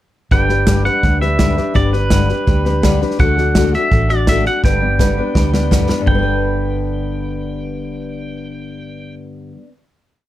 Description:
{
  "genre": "honky-tonk and classic country",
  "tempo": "167 BPM",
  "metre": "4/4",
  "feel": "straight",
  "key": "G major",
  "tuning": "A4 = 440 Hz",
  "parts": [
    { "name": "pedal steel guitar", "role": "melody", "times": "0.3-9.1 s", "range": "B4 to G5", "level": "-21 LUFS", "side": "right 1 dB", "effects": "none" },
    { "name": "picked steel-string acoustic guitar", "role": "accompaniment", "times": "0.3-9.7 s", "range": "G2 to B4", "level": "-19 LUFS", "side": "left 3 dB", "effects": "none" },
    { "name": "vintage muted fingered electric bass", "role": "bass", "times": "0.3-9.1 s", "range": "G1 to D2", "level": "-19 LUFS", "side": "right 1 dB", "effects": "none" },
    { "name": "natural country drum kit", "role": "drums", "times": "0.3-6.2 s", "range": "hi-hat, kick drum, snare drum", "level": "-16 LUFS", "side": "right 1 dB", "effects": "none" }
  ],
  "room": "light reverb",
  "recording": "dark, warm production",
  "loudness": "-13 LUFS",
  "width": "side -14 dB against mid",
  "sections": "0.3-6.1 A section; 6.1-9.0 final chord",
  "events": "drum fill 4.6-6.1",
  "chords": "0.3 G; 3.2 D; 4.6 G"
}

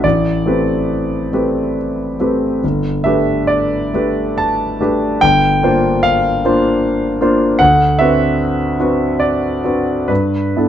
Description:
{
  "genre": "classical, impressionist solo piano",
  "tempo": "62-79 BPM",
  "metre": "3/4",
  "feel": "rubato",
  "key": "G major",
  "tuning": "A4 = 440 Hz",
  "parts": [
    { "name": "clear concert grand piano", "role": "solo", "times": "0.0-10.7 s", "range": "G1 to A5", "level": "-13 LUFS", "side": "equal", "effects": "none" }
  ],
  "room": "light reverb",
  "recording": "dark, warm production, nothing above 7.9 kHz",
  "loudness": "-13 LUFS",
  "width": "side -10 dB against mid",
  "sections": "0.0-10.7 A section",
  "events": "none",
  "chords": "0.0 Am11; 2.6 Gadd9; 5.2 Bb69/G; 7.6 D13; 10.1 G69"
}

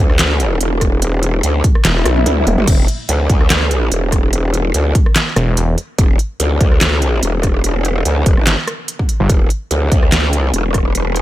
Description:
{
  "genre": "heavy wobble dubstep",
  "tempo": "145 BPM",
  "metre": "4/4",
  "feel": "swing 54% on 16ths, half-time",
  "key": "E minor",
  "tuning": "A4 = 437 Hz",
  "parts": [
    { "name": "growl bass", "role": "bass", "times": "0.0-11.2 s", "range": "E1 to D2", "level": "-15 LUFS", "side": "equal", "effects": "chorus, overdrive" },
    { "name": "dubstep drum kit", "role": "drums", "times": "0.1-11.2 s", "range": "crash cymbal, handclaps, hi-hat, rim click, snare drum, toms", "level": "-18 LUFS", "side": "equal", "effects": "small room ambience" },
    { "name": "electronic kick drum", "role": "drums", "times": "0.8-10.8 s", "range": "none", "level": "-14 LUFS", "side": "equal", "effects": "small room ambience" },
    { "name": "snarling distorted saw bass", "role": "bass", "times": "1.8-2.6, 5.4-5.8, 9.2-9.3 s", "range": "E1 to B1", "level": "-14 LUFS", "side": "equal", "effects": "overdrive" },
    { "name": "swell", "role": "sound effects", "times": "2.0-2.7 s", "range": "none", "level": "-23 LUFS", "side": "equal", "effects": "none" }
  ],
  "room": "little or no reverb",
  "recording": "none",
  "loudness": "-12 LUFS",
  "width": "side -14 dB against mid",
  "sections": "0.0-11.2 A section",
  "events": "drum fill 1.8-2.7; swell 2.0-2.7",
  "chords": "none"
}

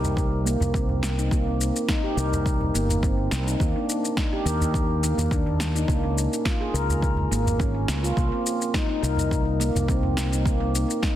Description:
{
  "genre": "organic downtempo",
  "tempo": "105 BPM",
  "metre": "4/4",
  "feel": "straight",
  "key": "unclear",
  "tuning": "A4 = 440 Hz",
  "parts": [
    { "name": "handpan", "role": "arpeggios", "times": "0.0-11.2 s", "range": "Bb3 to Bb4", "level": "-26 LUFS", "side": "equal", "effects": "low-pass filter, digital delay" },
    { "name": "fretless electric bass", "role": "bass", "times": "0.0-10.8 s", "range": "G1 to Eb2", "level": "-25 LUFS", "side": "equal", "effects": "sidechain pumping" },
    { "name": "electronic shaker and snare drum", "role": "drums", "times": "0.0-11.2 s", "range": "none", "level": "-31 LUFS", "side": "left 1 dB", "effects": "overdrive" },
    { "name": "udu", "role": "percussion", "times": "0.0-10.1 s", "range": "none", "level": "-30 LUFS", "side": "right 1 dB", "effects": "none" },
    { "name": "electronic kick drum", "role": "drums", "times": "0.2-11.1 s", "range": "none", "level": "-26 LUFS", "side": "equal", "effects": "overdrive" }
  ],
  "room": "light reverb",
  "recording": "dense, heavily limited modern master",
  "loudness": "-21 LUFS",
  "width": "side -12 dB against mid",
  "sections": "0.0-11.2 A section",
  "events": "filter sweep on handpan 0.0-11.2",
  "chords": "0.0 C7(no3); 3.6 Eb5; 5.9 Db5; 8.2 Cm7"
}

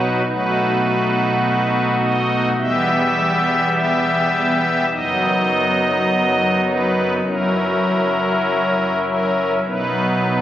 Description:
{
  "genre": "classical, chorale-style piece for pipe organ",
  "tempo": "51 BPM",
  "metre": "4/4",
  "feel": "straight",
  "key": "B major",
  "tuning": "A4 = 440 Hz",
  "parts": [
    { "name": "pipe organ, strings celeste", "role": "solo", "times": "0.0-10.4 s", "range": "E1 to E5", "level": "-16 LUFS", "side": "equal", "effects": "none" }
  ],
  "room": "wet church reverb, RT60 3.8 s",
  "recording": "recorded on a phone in the room, studio reverb, compression",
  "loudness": "-16 LUFS",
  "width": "side -12 dB against mid",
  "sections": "0.0-10.4 A section",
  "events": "none",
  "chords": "0.3 B7; 2.6 Em; 4.9 B/F#; 7.2 F#7; 9.6 B"
}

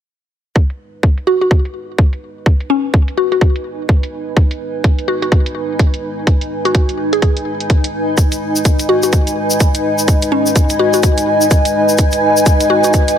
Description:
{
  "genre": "bass house",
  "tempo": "126 BPM",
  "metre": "4/4",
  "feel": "swing 60% on 16ths",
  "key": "G# minor",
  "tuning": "A4 = 438 Hz",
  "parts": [
    { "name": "dark analog pad", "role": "sustained chords", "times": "0.6-13.2 s", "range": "G#3 to D#5", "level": "-20 LUFS", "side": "left 2 dB", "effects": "chorus, sidechain pumping" },
    { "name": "electronic hi-hat", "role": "drums", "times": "0.6-13.2 s", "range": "none", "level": "-24 LUFS", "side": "right 2 dB", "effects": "overdrive, low-pass filter on hats" },
    { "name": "electronic kick drum", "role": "drums", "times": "0.6-13.1 s", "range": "none", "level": "-12 LUFS", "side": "equal", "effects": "none" },
    { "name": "granular cloud pad", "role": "texture", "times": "2.8-13.2 s", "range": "D#4 to G#5", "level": "-19 LUFS", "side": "right 2 dB", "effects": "built-in reverb, sidechain pumping" },
    { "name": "mallet-like synth pluck", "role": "melody", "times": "1.3-12.9 s", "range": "C#4 to G#4", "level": "-17 LUFS", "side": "left 2 dB", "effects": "chorus, phaser, ping-pong delay" },
    { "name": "tube shaker", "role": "percussion", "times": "8.2-13.2 s", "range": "none", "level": "-22 LUFS", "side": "left 2 dB", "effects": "none" }
  ],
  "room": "light reverb",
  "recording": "none",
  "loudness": "-12 LUFS",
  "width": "side -9 dB against mid",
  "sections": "0.6-13.2 A section",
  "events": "fade-in on ambient pad 0.6-13.2; filter sweep on analog synth pad 0.6-13.2",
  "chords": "0.6 G#m"
}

